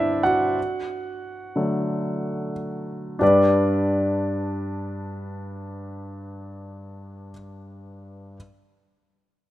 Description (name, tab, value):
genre	pop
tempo	free time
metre	none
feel	none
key	G major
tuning	A4 = 440 Hz
part	warm concert grand piano	accompaniment	0.0-8.4 s	G2 to F#5	-23 LUFS	equal	none
room	light reverb, small room ambience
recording	rough home demo mix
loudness	-21 LUFS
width	side -14 dB against mid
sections	0.0-3.2 A section; 3.2-5.9 B section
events	grand piano solo 0.0-3.2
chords	0.0 G; 0.6 D; 3.2 G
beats	free time